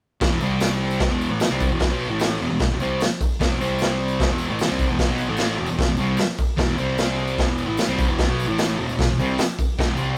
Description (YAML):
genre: garage rock duo or trio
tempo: 150 BPM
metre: 4/4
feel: straight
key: E minor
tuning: A4 = 440 Hz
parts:
  - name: thick fuzz guitar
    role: riff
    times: 0.2-10.2 s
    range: E2 to C4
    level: -25 LUFS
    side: equal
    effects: distortion
  - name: hollow-body short-scale picked electric bass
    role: bass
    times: 0.2-10.2 s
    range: E1 to C2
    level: -34 LUFS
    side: equal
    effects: tube saturation
  - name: raw garage drum kit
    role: drums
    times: 0.2-9.9 s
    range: hi-hat, kick drum, snare drum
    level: -25 LUFS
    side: equal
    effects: none
  - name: tambourine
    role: percussion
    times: 0.2-10.1 s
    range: none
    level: -44 LUFS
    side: equal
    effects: none
room: light reverb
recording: rough rehearsal-room recording, tube saturation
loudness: -22 LUFS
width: mono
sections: 0.2-10.2 A section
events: none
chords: 0.2 E5; 0.4 C5; 1.1 Em; 3.6 C5; 4.3 Em; 6.8 C5; 7.5 Em